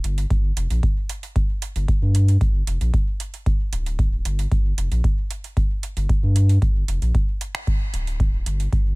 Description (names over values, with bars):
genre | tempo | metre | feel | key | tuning
dub techno | 114 BPM | 4/4 | straight | G minor | A4 = 439 Hz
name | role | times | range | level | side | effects
round analog bass | bass | 0.0-8.9 s | D1 to G2 | -20 LUFS | equal | sidechain pumping
booming analog drum machine | drums | 0.0-8.8 s | finger snaps, hi-hat | -34 LUFS | right 5 dB | none
electronic kick drum | drums | 0.3-8.8 s | none | -21 LUFS | equal | none
room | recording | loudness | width
little or no reverb | none | -19 LUFS | side -29 dB against mid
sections
0.0-9.0 A section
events
none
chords
none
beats
| 0.30 0.83 1.36 1.88 | 2.41 2.94 3.46 3.99 | 4.52 5.04 5.57 6.09 | 6.62 7.15 7.67 8.20 | 8.73